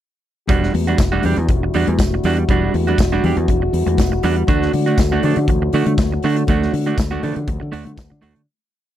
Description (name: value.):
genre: disco.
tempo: 120 BPM.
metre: 4/4.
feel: straight.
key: E minor.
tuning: A4 = 440 Hz.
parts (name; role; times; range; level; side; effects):
electric guitar at the edge of break-up; accompaniment; 0.5-8.4 s; G3 to A4; -20 LUFS; right 6 dB; none.
mellow French horn section; sustained chords; 0.5-8.4 s; D3 to F#4; -24 LUFS; left 1 dB; stereo widening.
fingered electric bass; bass; 0.5-8.5 s; E1 to D3; -20 LUFS; equal; none.
modern studio drum kit; drums; 0.5-8.5 s; hi-hat, kick drum, snare drum; -20 LUFS; equal; none.
congas; percussion; 0.5-8.3 s; none; -26 LUFS; left 8 dB; none.
tambourine; percussion; 1.0-8.1 s; none; -35 LUFS; right 16 dB; none.
room: little or no reverb.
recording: dry, close 1970s-style studio recording.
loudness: -15 LUFS.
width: side -11 dB against mid.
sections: 0.5-8.5 groove.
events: fade-out 6.5-8.5.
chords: 0.5 Em9; 4.5 D.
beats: | 0.49 0.99 1.49 1.98 | 2.48 2.98 3.48 3.98 | 4.48 4.98 5.48 5.98 | 6.48 6.98 7.47 7.97.